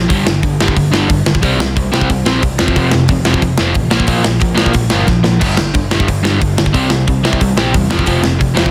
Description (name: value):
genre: punk rock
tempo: 181 BPM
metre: 4/4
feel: straight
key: G minor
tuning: A4 = 441 Hz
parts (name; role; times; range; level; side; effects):
- crunchy overdriven guitar; riff; 0.0-8.7 s; F2 to C4; -16 LUFS; equal; none
- picked electric bass; bass; 0.0-8.7 s; F1 to E2; -21 LUFS; equal; none
- tight metal drum kit; drums; 0.1-8.7 s; hi-hat, kick drum, snare drum, splash cymbal; -17 LUFS; equal; none
room: light reverb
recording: dense, heavily limited modern master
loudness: -13 LUFS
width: mono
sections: 0.0-8.7 A section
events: drum fill 5.1-5.4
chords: 0.1 G5; 1.4 C5; 2.6 F5; 3.9 Bb5; 5.4 G5; 6.7 C5; 7.9 F5